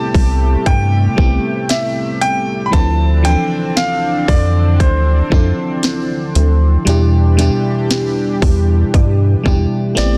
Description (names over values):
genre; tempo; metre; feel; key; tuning
contemporary R&B; 58 BPM; 4/4; straight; unclear; A4 = 444 Hz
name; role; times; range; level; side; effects
clear concert grand piano; melody; 0.0-10.2 s; C5 to B5; -23 LUFS; equal; tape echo
FM electric piano; accompaniment; 0.0-10.2 s; B2 to A4; -21 LUFS; equal; chorus
chorused pulse-width pad; sustained chords; 0.0-10.2 s; C3 to G4; -26 LUFS; equal; none
rubbery square bass; bass; 0.1-10.2 s; A1 to G2; -15 LUFS; equal; none
trap drum kit; drums; 0.1-10.2 s; hi-hat, kick drum, snare drum; -18 LUFS; equal; vintage 12-bit sampler grit
mallet-like synth pluck; texture; 2.7-10.2 s; B4 to D5; -38 LUFS; equal; none
room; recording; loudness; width
little or no reverb; dense, heavily limited modern master; -14 LUFS; mono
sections
0.0-10.2 A section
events
none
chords
0.0 Am7; 2.7 Dm7; 6.9 Em7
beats
0.66 1.70 | 2.73 3.77 4.80 5.83 | 6.87 7.90 8.94 9.97